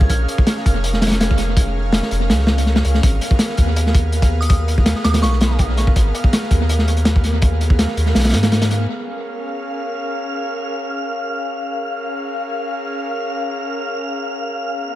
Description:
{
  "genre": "drum and bass, jungle",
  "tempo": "164 BPM",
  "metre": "4/4",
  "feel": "swing 53% on 16ths",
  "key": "unclear",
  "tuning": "A4 = 438 Hz",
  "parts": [
    { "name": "glassy synth bell", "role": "melody", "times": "0.0-0.3, 4.4-5.5 s", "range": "C#6 to G#6", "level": "-30 LUFS", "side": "right 1 dB", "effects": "chorus, tremolo, dub echo" },
    { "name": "airy breathy pad", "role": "sustained chords", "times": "0.0-15.0 s", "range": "B3 to E#5", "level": "-25 LUFS", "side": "equal", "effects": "chorus, vintage 12-bit sampler grit" },
    { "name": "soft dub sub bass", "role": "bass", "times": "0.0-8.9 s", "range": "E#1 to G#2", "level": "-17 LUFS", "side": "equal", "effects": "none" },
    { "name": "crunchy breakbeat drum kit", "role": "drums", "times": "0.0-8.8 s", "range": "hi-hat, kick drum, snare drum", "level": "-16 LUFS", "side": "equal", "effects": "tape echo" },
    { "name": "wind-like tuned noise texture", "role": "texture", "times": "9.3-15.0 s", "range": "E#5 to E#6", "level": "-26 LUFS", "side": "left 2 dB", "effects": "built-in reverb" }
  ],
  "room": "light reverb, small room ambience",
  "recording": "echo-heavy mix",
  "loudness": "-16 LUFS",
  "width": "side -14 dB against mid",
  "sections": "0.0-8.9 A section; 8.9-15.0 B section",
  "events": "drop 0.0-8.9; kick drops out 8.2-8.9",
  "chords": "0.0 A#m7; 3.0 G#m69; 8.9 A#m7"
}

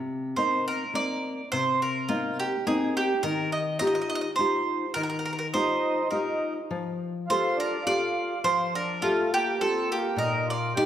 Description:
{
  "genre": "italian folk, Italian serenade",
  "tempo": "104 BPM",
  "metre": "3/4",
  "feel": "straight",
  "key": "Eb major",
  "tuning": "A4 = 440 Hz",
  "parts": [
    { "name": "nylon-string guitar", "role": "accompaniment", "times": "0.0-10.9 s", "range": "Bb2 to A4", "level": "-29 LUFS", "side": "left 2 dB", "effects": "none" },
    { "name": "mandolin", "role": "melody", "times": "0.4-10.8 s", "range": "F4 to Eb5", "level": "-27 LUFS", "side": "right 2 dB", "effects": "none" },
    { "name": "mellow accordion", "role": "second line", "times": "5.5-10.9 s", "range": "A3 to G4", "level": "-30 LUFS", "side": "right 2 dB", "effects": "none" }
  ],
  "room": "wet recital hall reverb, RT60 1.7 s",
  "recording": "recorded in a church or concert hall",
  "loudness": "-24 LUFS",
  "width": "side -10 dB against mid",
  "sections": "0.0-10.9 A section",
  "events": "none",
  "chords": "0.0 Cm7; 3.2 Ebadd9; 6.7 Fadd9; 10.2 Eb/Bb"
}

